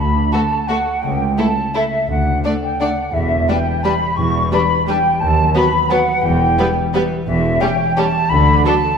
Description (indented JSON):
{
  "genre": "classical, orchestral ballroom waltz",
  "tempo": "173 BPM",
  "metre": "3/4",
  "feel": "uneven beats, rubato",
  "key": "D major",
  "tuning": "A4 = 440 Hz",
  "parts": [
    { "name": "small flute group", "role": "second line", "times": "0.0-9.0 s", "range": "E5 to C#6", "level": "-18 LUFS", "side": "equal", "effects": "none" },
    { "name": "concert harp", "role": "arpeggios", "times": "0.0-9.0 s", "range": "C#3 to E5", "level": "-23 LUFS", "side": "left 4 dB", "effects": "none" },
    { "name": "rich studio cello section", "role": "bass", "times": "0.0-8.6 s", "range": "C#2 to D3", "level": "-23 LUFS", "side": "right 2 dB", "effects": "none" },
    { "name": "rich studio double bass section", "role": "bass", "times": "0.0-8.6 s", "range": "E1 to D#2", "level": "-22 LUFS", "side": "right 2 dB", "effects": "none" },
    { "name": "rich studio violin section", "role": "melody", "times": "0.3-8.7 s", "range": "G4 to D5", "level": "-27 LUFS", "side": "left 1 dB", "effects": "none" },
    { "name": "rich studio violin section", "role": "second line", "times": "0.3-8.7 s", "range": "B3 to F#4", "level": "-26 LUFS", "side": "left 1 dB", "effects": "none" },
    { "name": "rich studio viola section", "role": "accompaniment", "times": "0.3-8.7 s", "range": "F#3 to A3", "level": "-23 LUFS", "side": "equal", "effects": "none" }
  ],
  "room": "wet scoring stage reverb, RT60 1.7 s",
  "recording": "minimal, uncompressed stereo recording",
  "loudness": "-14 LUFS",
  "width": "side -6 dB against mid",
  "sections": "0.0-9.0 A section",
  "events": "none",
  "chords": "0.0 D; 1.0 A7/C#; 2.1 D; 3.1 Em7; 5.2 B7/D#; 6.2 Em; 7.3 C#dim/E; 8.3 D"
}